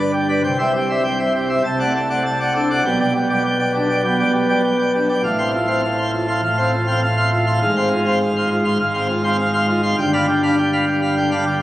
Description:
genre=classical, organ toccata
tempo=101 BPM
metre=4/4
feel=straight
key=unclear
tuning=A4 = 440 Hz
part: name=pipe organ, plenum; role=solo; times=0.0-11.6 s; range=G1 to C6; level=-16 LUFS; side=equal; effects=none
room=wet church reverb, RT60 3.1 s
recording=recorded on a phone in the room, club reverb, compression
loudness=-16 LUFS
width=side -15 dB against mid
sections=0.4-11.6 A section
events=none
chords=0.4 C; 1.6 D7/C; 2.8 G/B; 5.2 F/A; 7.6 Fm/Ab; 10.0 G7

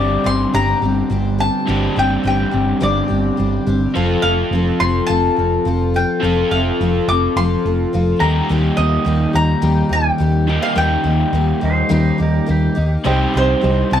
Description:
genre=folk rock and heartland rock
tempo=105 BPM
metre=4/4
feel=straight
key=unclear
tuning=A4 = 440 Hz
part: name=mandolin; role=melody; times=0.0-14.0 s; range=C5 to D6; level=-20 LUFS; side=left 2 dB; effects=none
part: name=picked twelve-string acoustic guitar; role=accompaniment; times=0.0-14.0 s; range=G2 to A4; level=-21 LUFS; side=left 4 dB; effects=none
part: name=crunchy overdriven guitar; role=riff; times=0.0-14.0 s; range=G2 to A4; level=-20 LUFS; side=right 2 dB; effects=none
part: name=hollow-body short-scale fingered electric bass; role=bass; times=0.0-14.0 s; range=F1 to Eb2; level=-18 LUFS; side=equal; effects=none
part: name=clean lap steel guitar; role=second line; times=11.6-12.9 s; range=Eb4 to C5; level=-24 LUFS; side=right 3 dB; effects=none
part: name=warm upright piano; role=accompaniment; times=13.1-14.0 s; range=G4 to Eb5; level=-25 LUFS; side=right 5 dB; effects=none
room=little or no reverb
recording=dry, close 1970s-style studio recording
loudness=-14 LUFS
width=side -10 dB against mid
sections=0.0-13.1 A section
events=none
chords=0.0 Gsus4; 3.9 F; 8.2 Eb; 13.1 Cm

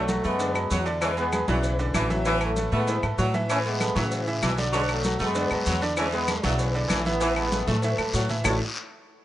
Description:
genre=latin, salsa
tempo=194 BPM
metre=4/4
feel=straight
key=A major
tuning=A4 = 445 Hz
part: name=mellow trombone section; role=melody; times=0.0-8.6 s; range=B2 to C#4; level=-29 LUFS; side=equal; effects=none
part: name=bright saxophone section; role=second line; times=0.0-8.6 s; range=A2 to A3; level=-30 LUFS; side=equal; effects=none
part: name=bright concert grand piano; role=accompaniment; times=0.0-8.6 s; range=D3 to A5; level=-30 LUFS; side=right 2 dB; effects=none
part: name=upright bass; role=bass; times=0.0-8.6 s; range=A1 to A2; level=-28 LUFS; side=equal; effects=none
part: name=congas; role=percussion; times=0.1-8.5 s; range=none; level=-33 LUFS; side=equal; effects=none
part: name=cowbell and bongos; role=percussion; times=0.1-8.5 s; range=none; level=-36 LUFS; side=left 4 dB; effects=none
part: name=maracas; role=percussion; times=0.1-8.5 s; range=none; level=-40 LUFS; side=right 2 dB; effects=none
part: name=agogo bells and timbales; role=percussion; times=0.2-8.5 s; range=none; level=-38 LUFS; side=right 4 dB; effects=none
part: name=claves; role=percussion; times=0.6-8.5 s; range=none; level=-31 LUFS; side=left 6 dB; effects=none
part: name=guiro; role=percussion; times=3.5-8.5 s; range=none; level=-35 LUFS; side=left 3 dB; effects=none
room=light reverb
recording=rough home demo mix, nothing above 10.9 kHz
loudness=-22 LUFS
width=side -13 dB against mid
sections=0.0-8.4 A section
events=drum fill 7.7-8.4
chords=0.0 Bm7; 1.0 Asus2; 4.7 Bm7; 6.0 E7; 7.2 Asus2; 8.4 A

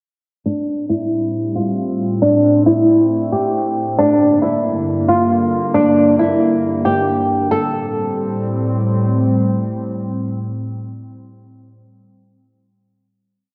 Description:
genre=hip hop, trap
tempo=136 BPM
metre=4/4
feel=half-time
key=A phrygian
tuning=A4 = 440 Hz
part: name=flamenco guitar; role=melody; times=0.5-8.8 s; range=D4 to A4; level=-18 LUFS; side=equal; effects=subtle chorus, low-pass filter, analog delay
part: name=warbly tape-like pad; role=sustained chords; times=1.0-11.8 s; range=G2 to C4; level=-21 LUFS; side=equal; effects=chorus, built-in reverb, phaser, low-pass filter
room=wet plate reverb, RT60 3.0 s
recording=dreamy mix soaked in reverb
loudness=-17 LUFS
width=mono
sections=0.5-7.5 breakdown; 7.5-11.0 final chord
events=filter sweep 0.5-7.5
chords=0.5 Am7; 4.0 Gm; 7.5 Am7

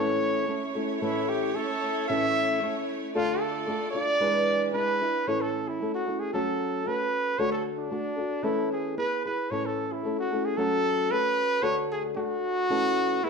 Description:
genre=mexican folk, mariachi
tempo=113 BPM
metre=2/4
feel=rubato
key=A major from 5.3 s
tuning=A4 = 438 Hz
part: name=clear trumpet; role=melody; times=0.0-13.3 s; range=D4 to E5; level=-27 LUFS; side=right 1 dB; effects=none
part: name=nylon-string guitar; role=accompaniment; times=0.0-13.3 s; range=A2 to B4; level=-29 LUFS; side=left 2 dB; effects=none
part: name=warm symphonic violin section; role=sustained chords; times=0.0-5.3 s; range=G#3 to D5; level=-35 LUFS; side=right 1 dB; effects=none
room=moderate large studio reverb, RT60 1.0 s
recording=band playing live in one room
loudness=-25 LUFS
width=side -5 dB against mid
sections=0.0-5.3 A section; 5.3-13.3 B section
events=none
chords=0.0 A; 3.1 Dm; 4.2 E7; 5.3 A; 6.3 F#m; 7.4 D; 8.4 A/E; 9.0 E; 9.5 A; 10.6 F#m; 11.6 D; 12.7 A/E

